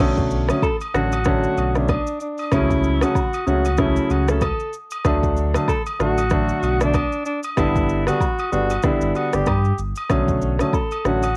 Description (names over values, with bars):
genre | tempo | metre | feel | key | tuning
afrobeats | 95 BPM | 4/4 | swing 58% on 16ths | B minor | A4 = 440 Hz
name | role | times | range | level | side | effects
warm grand piano | accompaniment | 0.0-11.2 s | C#3 to D4 | -24 LUFS | equal | cassette tape
sub bass with octave | bass | 0.0-11.4 s | G1 to G2 | -25 LUFS | equal | none
agogo bells and woodblock | percussion | 0.0-11.4 s | none | -32 LUFS | equal | none
afro-pop drum kit | drums | 0.2-11.4 s | kick drum, rim click, shaker | -26 LUFS | equal | cassette tape
breathy alto saxophone | melody | 0.6-11.4 s | D4 to A4 | -27 LUFS | equal | cassette tape
room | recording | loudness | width
light reverb | home recording on cassette | -20 LUFS | mono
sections
0.0-11.4 A section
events
none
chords
0.0 Bm7; 2.5 F#m/C#; 5.0 D; 7.6 G; 10.1 Bm7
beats
| 0.00 0.63 1.26 1.89 | 2.52 3.15 3.79 4.42 | 5.05 5.68 6.31 6.94 | 7.57 8.21 8.84 9.47 | 10.10 10.73 11.36